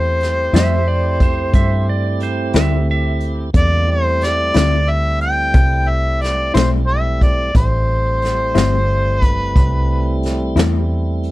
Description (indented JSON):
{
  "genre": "slow blues",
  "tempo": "60 BPM (dotted quarters)",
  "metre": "12/8",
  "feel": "straight",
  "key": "A minor",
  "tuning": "A4 = 440 Hz",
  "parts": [
    { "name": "mellow harmonica", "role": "melody", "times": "0.0-10.2 s", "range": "C5 to G5", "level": "-19 LUFS", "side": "equal", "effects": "overdrive, slapback echo" },
    { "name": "tonewheel organ", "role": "sustained chords", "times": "0.0-11.3 s", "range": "C#3 to G4", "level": "-25 LUFS", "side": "right 2 dB", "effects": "overdrive, slow rotary speaker" },
    { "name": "vintage muted fingered electric bass", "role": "bass", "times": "0.0-11.3 s", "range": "G1 to G2", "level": "-18 LUFS", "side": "equal", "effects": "none" },
    { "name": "vintage brush drum kit", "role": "drums", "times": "0.2-11.3 s", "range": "hi-hat, kick drum, snare drum", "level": "-17 LUFS", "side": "equal", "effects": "none" },
    { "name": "clean lap steel guitar", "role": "second line", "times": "0.5-3.4 s", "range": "C5 to E5", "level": "-24 LUFS", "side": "right 6 dB", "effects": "none" },
    { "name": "electric guitar through a small old amp", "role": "accompaniment", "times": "0.5-10.8 s", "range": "A2 to E4", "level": "-19 LUFS", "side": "left 6 dB", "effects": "tremolo" }
  ],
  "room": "little or no reverb",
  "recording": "none",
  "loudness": "-14 LUFS",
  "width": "side -17 dB against mid",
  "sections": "0.0-11.3 A section",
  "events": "none",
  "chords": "0.0 Am7",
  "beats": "0.54 1.54 2.54 | 3.55 4.55 5.55 6.55 | 7.56 8.56 9.56 10.56"
}